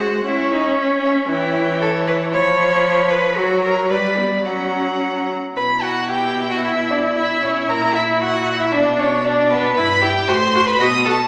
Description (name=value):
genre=quick classical-period movement for string quartet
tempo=115 BPM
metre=2/4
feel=rubato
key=unclear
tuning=A4 = 440 Hz
part: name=rich violin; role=melody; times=0.0-11.3 s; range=B4 to D#6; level=-23 LUFS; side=equal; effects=none
part: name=rich violin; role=second line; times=0.0-11.1 s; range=B3 to F#5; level=-25 LUFS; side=equal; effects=none
part: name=rich viola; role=accompaniment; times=0.0-11.1 s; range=E3 to F#4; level=-23 LUFS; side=equal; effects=none
part: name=clear cello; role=bass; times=0.0-11.3 s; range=G2 to C#5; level=-24 LUFS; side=equal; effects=none
room=wet scoring stage reverb, RT60 1.6 s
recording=none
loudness=-18 LUFS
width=mono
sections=0.0-5.6 A section; 5.6-11.3 B section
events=none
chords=0.3 C#m; 1.3 C#dim/E; 2.3 C#7/E#; 3.4 F#; 3.9 G; 4.5 F#; 5.6 Emadd9/B; 7.7 F#7/A#; 8.7 Bm; 9.8 Em/G; 10.3 F#dim/A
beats=| 0.26 0.78 | 1.29 1.81 | 2.33 2.85 | 3.38 3.90 | 4.45 5.01 | 5.57 6.11 | 6.64 7.17 | 7.70 8.22 | 8.74 9.26 | 9.77 10.29 | 10.81